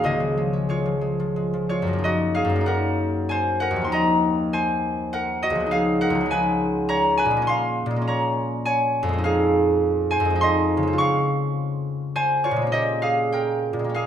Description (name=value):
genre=classical, solo harp piece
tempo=89-105 BPM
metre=3/4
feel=rubato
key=Gb lydian, Db lydian from 9.2 s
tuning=A4 = 445 Hz
part: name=concert harp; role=solo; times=0.0-14.1 s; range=Db2 to Db6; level=-20 LUFS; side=equal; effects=none
room=moderate recital hall reverb, RT60 1.4 s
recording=minimal, uncompressed stereo recording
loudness=-20 LUFS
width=side -9 dB against mid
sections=0.0-2.1 A section; 2.1-14.1 B section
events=none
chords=0.1 Db; 2.1 Gb6; 3.9 Ebmadd9; 5.7 Db9; 7.5 Bbm7; 9.2 Fm7; 11.0 Dbmaj7; 12.7 Bbm7